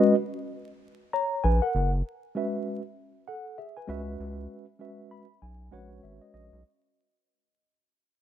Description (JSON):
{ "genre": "hip hop, jazz-hop", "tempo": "98 BPM", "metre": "4/4", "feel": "swing 59% on 16ths", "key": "unclear", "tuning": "A4 = 439 Hz", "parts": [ { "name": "mellow tine electric piano", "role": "accompaniment", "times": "0.0-6.6 s", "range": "G#3 to B5", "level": "-26 LUFS", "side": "equal", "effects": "medium stereo tremolo" }, { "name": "round analog bass", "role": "bass", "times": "1.4-6.6 s", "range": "F#1 to C#2", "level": "-27 LUFS", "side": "equal", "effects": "none" } ], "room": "moderate plate reverb, RT60 2.4 s", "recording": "dark, warm production, vinyl crackle", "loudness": "-27 LUFS", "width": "side -10 dB against mid", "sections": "0.0-6.6 A section", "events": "fade-out 0.0-6.6; tine electric piano fill 4.8-6.6", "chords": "0.0 G#m11; 1.7 F#9sus4; 3.9 C#m7" }